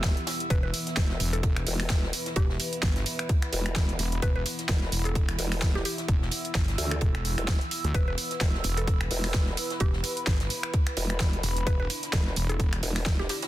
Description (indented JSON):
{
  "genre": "bass house",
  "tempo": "129 BPM",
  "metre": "4/4",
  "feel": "swing 56% on 16ths",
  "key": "E minor",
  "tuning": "A4 = 440 Hz",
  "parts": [
    { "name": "dark analog pad", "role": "sustained chords", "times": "0.0-13.5 s", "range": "E3 to B4", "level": "-39 LUFS", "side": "left 2 dB", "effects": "chorus, sidechain pumping" },
    { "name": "formant-sweep wobble bass", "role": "bass", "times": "0.0-13.3 s", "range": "E1 to D2", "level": "-31 LUFS", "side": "equal", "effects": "chorus, overdrive, sidechain pumping" },
    { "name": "big-room dance drum kit", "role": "drums", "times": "0.0-13.5 s", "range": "finger snaps, hi-hat, snare drum", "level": "-32 LUFS", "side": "equal", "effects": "overdrive" },
    { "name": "compact cocktail drum kit", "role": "drums", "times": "0.0-13.5 s", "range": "ride cymbal, snare drum", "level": "-40 LUFS", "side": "right 3 dB", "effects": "sidechain pumping on cymbals, high-pass filter on cymbals, soft clipping on snare, high-pass filter on snare, high-pass filter on room" },
    { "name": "electronic kick drum", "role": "drums", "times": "0.0-13.2 s", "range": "none", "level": "-26 LUFS", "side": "equal", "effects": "none" },
    { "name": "warbly tape-like pad", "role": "texture", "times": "0.0-13.5 s", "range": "B3 to E6", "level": "-38 LUFS", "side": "right 1 dB", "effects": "chorus, built-in reverb, sidechain pumping" },
    { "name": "mallet-like synth pluck", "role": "melody", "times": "0.5-13.4 s", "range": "G4 to B4", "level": "-38 LUFS", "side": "equal", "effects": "chorus, dub echo" },
    { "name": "wobble bass", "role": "bass", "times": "0.5-12.8 s", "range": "E1 to D2", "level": "-29 LUFS", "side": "equal", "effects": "chorus, tube saturation, sidechain pumping" }
  ],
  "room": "digital ambience",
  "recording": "dense, heavily limited modern master",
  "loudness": "-25 LUFS",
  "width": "side -14 dB against mid",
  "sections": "0.0-13.5 A section",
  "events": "none",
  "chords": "0.0 E5",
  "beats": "0.04 | 0.50 0.97 1.43 1.90 | 2.36 2.83 3.29 3.76 | 4.22 4.69 5.16 5.62 | 6.08 6.55 7.02 7.48 | 7.95 8.41 8.88 9.34 | 9.81 10.27 10.74 11.20 | 11.67 12.13 12.60 13.06"
}